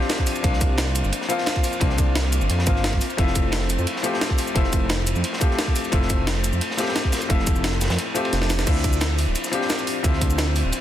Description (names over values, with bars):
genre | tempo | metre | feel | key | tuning
liquid drum and bass | 175 BPM | 4/4 | straight | F major | A4 = 442 Hz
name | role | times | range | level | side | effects
clear grand piano | accompaniment | 0.0-10.8 s | F3 to G4 | -25 LUFS | left 3 dB | digital delay
crunchy breakbeat drum kit | drums | 0.0-10.8 s | ride cymbal, snare drum | -30 LUFS | right 1 dB | high-pass filter on cymbals, studio reverb, high-pass filter on snare, high-pass filter on room
jungle sampler-style drum kit | drums | 0.1-10.8 s | crash cymbal, hi-hat, shaker, snare drum | -27 LUFS | equal | studio reverb
electronic kick drum | drums | 0.2-10.3 s | none | -22 LUFS | equal | studio reverb
dark detuned saw bass | bass | 0.4-10.7 s | D1 to F2 | -23 LUFS | right 1 dB | none
room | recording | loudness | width
light reverb, studio ambience | dense, heavily limited modern master | -19 LUFS | side -12 dB against mid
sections
0.0-8.7 A section; 8.7-10.8 A section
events
drop 0.0-8.7, 8.7-10.8; kick drops out 8.0-8.7; drum fill 8.3-8.7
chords
0.4 C9sus4; 3.0 Fmaj7; 8.7 Dm9